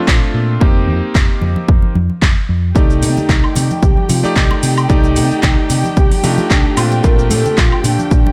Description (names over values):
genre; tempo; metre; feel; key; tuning
nu-disco, nu disco; 112 BPM; 4/4; swing 55% on 16ths; C dorian; A4 = 440 Hz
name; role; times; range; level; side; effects
soft octave-layered synth lead; melody; 0.0-8.3 s; D4 to Bb4; -23 LUFS; equal; chorus, cassette tape, digital delay
clear electric grand piano; accompaniment; 0.0-8.3 s; A3 to D5; -23 LUFS; equal; sidechain pumping, delay
hollow-body short-scale fingered electric bass; bass; 0.1-8.2 s; F1 to C3; -19 LUFS; equal; sidechain pumping
electronic kick drum; drums; 0.1-8.2 s; none; -15 LUFS; equal; none
house drum kit; drums; 0.1-8.2 s; cabasa, handclaps, hi-hat, woodblock; -22 LUFS; equal; none
congas; percussion; 1.4-8.3 s; none; -26 LUFS; equal; none
dark studio violin section; sustained chords; 2.8-8.3 s; G4 to G5; -26 LUFS; equal; sidechain pumping
room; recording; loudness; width
digital ambience; none; -13 LUFS; mono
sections
0.0-8.3 A section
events
none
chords
0.0 Bbmaj7; 0.6 F9sus4; 2.8 Cm69; 6.8 Bbmaj7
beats
0.08 | 0.61 1.15 1.68 2.22 | 2.76 3.29 3.83 4.36 | 4.90 5.43 5.97 6.51 | 7.04 7.58 8.11